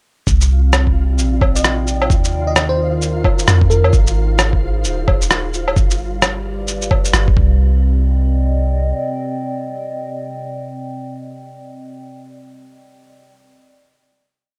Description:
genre	future garage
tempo	131 BPM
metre	4/4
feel	swing 62% on 16ths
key	C minor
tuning	A4 = 439 Hz
part	warbly tape-like pad	sustained chords	0.3-12.0 s	C3 to Bb5	-27 LUFS	equal	chorus, built-in reverb, sidechain pumping
part	soft 808-style bass	bass	0.3-8.9 s	Eb1 to F2	-18 LUFS	equal	sidechain pumping
part	electronic kick drum	drums	0.3-7.5 s	none	-18 LUFS	equal	none
part	electronic shaker, rim click and woodblock	drums	0.3-7.2 s	none	-20 LUFS	equal	none
part	flickering grainy texture	texture	0.5-7.6 s	F4 to F5	-33 LUFS	equal	built-in reverb
part	bell-like FM electric piano	melody	1.6-4.0 s	Bb4 to Eb5	-27 LUFS	equal	chorus, phaser, delay
room	little or no reverb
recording	dark, warm production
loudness	-16 LUFS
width	mono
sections	0.3-7.6 groove; 7.6-11.3 final chord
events	none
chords	0.3 Cmadd9; 2.1 Ebsus2; 3.9 Ab; 5.8 G7; 7.4 Csus4; 7.6 Cmadd9

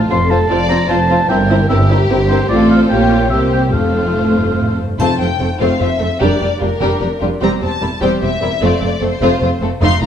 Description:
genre	classical, dramatic, fast romantic movement for symphony orchestra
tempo	149 BPM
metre	3/4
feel	straight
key	F major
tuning	A4 = 439 Hz
part	warm symphonic violin section	melody	0.0-10.1 s	F4 to C6	-20 LUFS	left 4 dB	none
part	dark symphonic cello section	bass	0.0-10.1 s	E2 to C3	-19 LUFS	right 1 dB	none
part	rich studio double bass section	bass	0.0-10.1 s	E1 to C2	-19 LUFS	right 2 dB	none
part	warm oboe	second line	0.1-4.8 s	C5 to C6	-19 LUFS	right 1 dB	none
part	warm symphonic violin section	second line	0.1-10.1 s	C4 to F5	-21 LUFS	left 3 dB	none
part	warm studio viola section	accompaniment	0.1-10.1 s	G3 to F4	-19 LUFS	right 1 dB	none
part	timpani	percussion	3.7-5.6, 9.8-10.1 s	F2	-23 LUFS	left 1 dB	none
part	triangle	percussion	5.0-5.8 s	none	-41 LUFS	left 5 dB	none
room	wet recital hall reverb, RT60 1.7 s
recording	dark, warm production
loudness	-12 LUFS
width	side -9 dB against mid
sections	0.0-5.0 A section; 5.0-10.1 B section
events	none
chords	0.1 F; 1.3 C7/G; 2.5 F/A; 2.9 Gm7b5/Bb; 3.3 C7(no3); 3.7 F; 6.2 Gm7/F; 7.4 C/E; 8.6 F

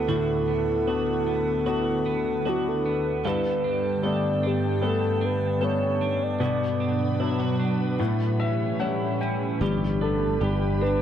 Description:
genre	pop ballad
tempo	76 BPM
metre	4/4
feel	straight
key	unclear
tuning	A4 = 445 Hz
part	soft octave-layered synth lead	melody	0.0-11.0 s	F#4 to D5	-27 LUFS	right 1 dB	chorus, slapback echo
part	clear concert grand piano	accompaniment	0.0-11.0 s	G2 to G5	-28 LUFS	left 6 dB	none
part	glassy FM pad	sustained chords	0.0-11.0 s	D2 to B5	-29 LUFS	right 2 dB	ensemble chorus, built-in reverb
part	twelve-string electric guitar	arpeggios	0.0-11.0 s	G2 to A4	-31 LUFS	right 6 dB	analog chorus
part	sustaining fretless electric bass	bass	9.6-11.0 s	G1	-26 LUFS	equal	none
room	light reverb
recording	dry, close 1970s-style studio recording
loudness	-22 LUFS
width	side -9 dB against mid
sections	0.0-9.6 A section; 9.6-11.0 B section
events	grand piano fill 8.0-9.6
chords	0.0 D6; 3.2 Gadd9; 6.4 Bm; 8.0 A7; 9.6 G

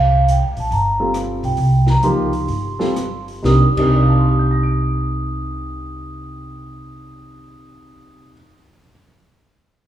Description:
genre	modal jazz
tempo	122-143 BPM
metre	4/4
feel	swing 67% on 8ths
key	C dorian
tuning	A4 = 440 Hz
part	vibraphone with medium mallets	melody	0.0-8.3 s	F5 to Eb6	-22 LUFS	right 2 dB	none
part	upright bass	bass	0.0-8.3 s	G1 to D2	-18 LUFS	right 1 dB	none
part	open jazz drum kit	drums	0.3-3.9 s	crash cymbal, hi-hat, kick drum, rim click, snare drum	-29 LUFS	left 2 dB	none
part	warm grand piano	accompaniment	1.0-9.1 s	C3 to D7	-21 LUFS	equal	none
room	moderate recital hall reverb, RT60 1.8 s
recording	recorded in a church or concert hall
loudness	-15 LUFS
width	side -12 dB against mid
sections	0.0-3.4 A section; 3.4-7.4 B section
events	slowing down 0.0-3.4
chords	0.0 C5; 3.4 Cm9

